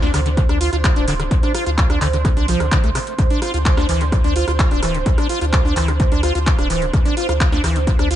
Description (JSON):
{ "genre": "acid house", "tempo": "128 BPM", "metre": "4/4", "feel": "straight", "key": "D minor", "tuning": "A4 = 440 Hz", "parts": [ { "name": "dark analog pad", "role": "sustained chords", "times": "0.0-8.2 s", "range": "C5", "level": "-26 LUFS", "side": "right 10 dB", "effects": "chorus, sidechain pumping" }, { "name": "deep acid bass", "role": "riff", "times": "0.0-8.2 s", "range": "C3 to F4", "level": "-22 LUFS", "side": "left 1 dB", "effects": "tube saturation, wide subtle chorus, dub echo" }, { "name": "warm sub bass", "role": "bass", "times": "0.0-8.2 s", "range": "D1 to D2", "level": "-21 LUFS", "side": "equal", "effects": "tube saturation, sidechain pumping" }, { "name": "electro analog drum machine", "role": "drums", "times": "0.0-8.2 s", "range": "handclaps, hi-hat, rim click, snare drum", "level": "-25 LUFS", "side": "equal", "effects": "dub echo" }, { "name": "electronic kick drum", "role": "drums", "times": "0.4-8.0 s", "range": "none", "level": "-17 LUFS", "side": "equal", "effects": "none" } ], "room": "little or no reverb", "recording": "echo-heavy mix, nothing above 10.5 kHz", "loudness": "-15 LUFS", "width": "side -12 dB against mid", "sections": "0.0-8.2 A section", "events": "none", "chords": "0.0 Dm" }